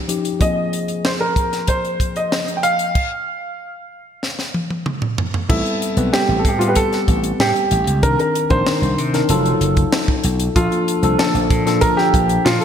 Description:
polished 1980s jazz-funk pop; 95 BPM; 4/4; straight; A4 = 440 Hz
tine electric piano; accompaniment; 0.0-12.6 s; Eb3 to C5; -20 LUFS; left 2 dB; wide subtle chorus
tight funk drum kit; drums; 0.1-12.6 s; crash cymbal, hi-hat, kick drum, snare drum, toms; -20 LUFS; equal; gated reverb
warm baby grand piano; melody; 0.4-12.6 s; E4 to G5; -20 LUFS; right 2 dB
slap bass; bass; 5.5-12.6 s; F1 to C3; -20 LUFS; equal
lush unison pad; sustained chords; 10.6-12.6 s; Bb2 to A4; -30 LUFS; right 1 dB
moderate lush hall reverb, RT60 1.8 s, small room ambience; bright 1980s-style digital production; -15 LUFS; side -8 dB against mid
0.0-5.5 A section; 5.5-12.6 B section
stop 3.0-5.5; drum fill 4.2-5.5
0.4 Ab69; 3.0 N.C.; 5.5 Am9; 8.0 Cm9; 9.3 F7b9; 10.6 Bbmaj7

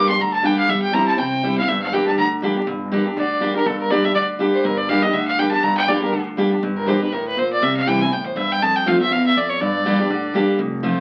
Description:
bluegrass; 242 BPM; 4/4; swing 56% on 8ths; G dorian; A4 = 445 Hz
clear fiddle; melody; 0.0-10.3 s; A4 to C6; -22 LUFS; equal
picked steel-string acoustic guitar; accompaniment; 0.0-11.0 s; E2 to G4; -22 LUFS; equal
upright bass; bass; 0.2-10.9 s; F1 to A2; -35 LUFS; equal
wet studio reverb, RT60 0.6 s; very old 78 rpm record, vinyl crackle; -19 LUFS; mono
0.0-2.7 A section; 2.7-10.6 B section
fiddle solo 2.7-11.0
0.0 Gm; 0.7 C/G; 1.7 Gm; 7.6 C; 8.6 F; 9.6 Gm

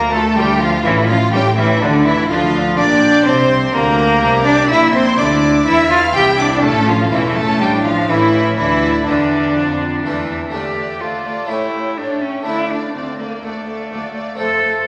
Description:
classical, baroque-style concerto movement with solo episodes; 124 BPM; 4/4; straight; D minor; A4 = 440 Hz
rich cello; melody; 0.0-14.8 s; D3 to A4; -19 LUFS; equal
rich chamber violin section; melody; 0.0-14.9 s; D5 to G6; -27 LUFS; equal
rich studio violin section; second line; 0.0-14.9 s; D4 to G5; -22 LUFS; equal
harpsichord; accompaniment; 0.0-14.9 s; D2 to G4; -29 LUFS; equal
rich chamber double bass section; bass; 0.0-10.5 s; E1 to F2; -25 LUFS; equal
rich studio cello section; bass; 0.0-14.8 s; D2 to F3; -26 LUFS; equal
rich chamber viola section; accompaniment; 0.1-14.9 s; A3 to G4; -25 LUFS; equal
wet recital hall reverb, RT60 1.8 s; -15 LUFS; mono
0.0-10.5 A section; 10.5-14.9 B section
0.0 Dm; 0.9 A7; 1.8 Dm; 2.8 Gm/Bb; 4.7 Em7b5/Bb; 6.6 A; 7.6 Dm/A; 8.1 A7; 8.6 Dm; 11.5 A7; 12.5 Dm

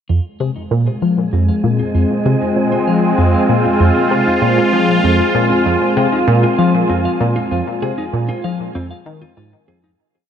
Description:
ambient, sequencer-driven space music; 97 BPM; 4/4; straight; F minor; A4 = 443 Hz
sweeping resonant pad; sustained chords; 0.1-10.0 s; Ab3 to F4; -16 LUFS; equal; chorus
clean electric guitar; arpeggios; 0.1-9.9 s; C4 to F5; -28 LUFS; equal; auto-pan, ping-pong delay
tight sequenced synth; riff; 0.1-9.9 s; F2 to F3; -16 LUFS; equal; chorus, cassette tape, ping-pong delay
wind-like tuned noise texture; texture; 1.3-10.0 s; Ab5; -27 LUFS; right 7 dB; built-in reverb
moderate huge ambient reverb, RT60 8.9 s; -13 LUFS; side -8 dB against mid
0.1-10.0 A section
fade-in on clean electric guitar 0.1-10.0; fade-in on synth texture 0.1-10.0; fade-out 6.7-10.0
0.1 Fm

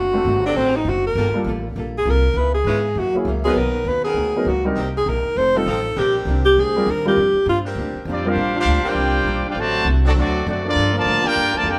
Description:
jazz, big band swing; 200 BPM; 4/4; swing 61% on 8ths; Bb major; A4 = 441 Hz
breathy alto saxophone; melody; 0.0-7.6 s; C4 to C5; -21 LUFS; equal
archtop guitar, miked and amplified; accompaniment; 0.0-11.8 s; Gb2 to A4; -33 LUFS; equal
upright bass; bass; 0.0-11.8 s; F1 to A2; -25 LUFS; equal
warm grand piano; accompaniment; 0.1-8.4 s; Gb3 to Bb4; -25 LUFS; equal
warm saxophone section; sustained chords; 0.5-11.6 s; D#3 to Cb5; -32 LUFS; equal
clear trumpet section; melody; 8.1-11.8 s; Bb3 to A5; -22 LUFS; equal
clear trombone section; second line; 8.1-11.8 s; C3 to G4; -27 LUFS; equal
moderate stone room reverb, RT60 1.0 s; band playing live in one room; -19 LUFS; mono
0.0-8.4 A section; 8.4-11.8 B section
alto saxophone solo 0.0-8.4
0.0 D7; 1.2 Gm9; 2.4 Dbm7; 3.0 Gb7; 3.6 Bmaj9; 4.8 Cm7; 5.4 F7; 6.0 Bb69; 9.6 D7; 10.8 Gm9

